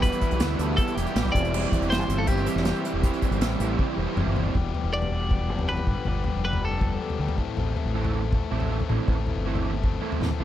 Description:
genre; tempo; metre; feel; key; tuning
indie rock; 159 BPM; 4/4; straight; A minor; A4 = 440 Hz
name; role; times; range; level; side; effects
twelve-string electric guitar; melody; 0.0-7.4 s; G4 to D5; -31 LUFS; equal; tape echo
delicate synth tine bell; second line; 0.0-4.2 s; E5 to G5; -42 LUFS; left 9 dB; none
string machine, violas; sustained chords; 0.0-4.5 s; G4 to E6; -41 LUFS; equal; none
biting overdriven guitar; riff; 0.0-10.4 s; E2 to A4; -31 LUFS; left 8 dB; spring reverb
crunchy overdriven guitar; riff; 0.0-4.5, 7.9-10.4 s; E3 to E4; -30 LUFS; right 12 dB; analog chorus
growling fingered electric bass; bass; 0.0-10.4 s; E1 to E2; -28 LUFS; equal; overdrive
unplugged drum kit; drums; 0.0-10.4 s; crash cymbal, hi-hat, kick drum, snare drum, toms; -28 LUFS; equal; none
room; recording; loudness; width
little or no reverb; dry, close 1970s-style studio recording; -23 LUFS; side -12 dB against mid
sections
0.0-4.6 A section; 4.6-10.4 B section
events
drum fill 3.8-4.6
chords
0.0 Em; 1.4 C/E; 4.6 Em7; 5.9 G7; 7.4 Am7

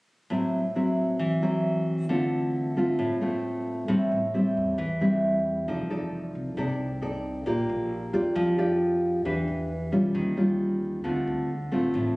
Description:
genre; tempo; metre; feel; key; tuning
bossa nova; 134 BPM; 4/4; straight; A minor; A4 = 440 Hz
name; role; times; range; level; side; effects
nylon-string guitar; accompaniment; 0.3-12.2 s; A2 to D5; -24 LUFS; equal; none
upright bass; bass; 3.9-12.2 s; F1 to F2; -35 LUFS; equal; none
room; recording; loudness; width
light reverb; recorded on a phone in the room, studio reverb, compression; -24 LUFS; side -23 dB against mid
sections
0.3-3.9 A section; 3.9-12.2 B section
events
none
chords
0.3 Am6; 2.1 Dm7; 3.9 Am7; 5.7 F6; 7.5 Bb6; 9.3 Em7; 10.1 D#9; 11.0 Dm7

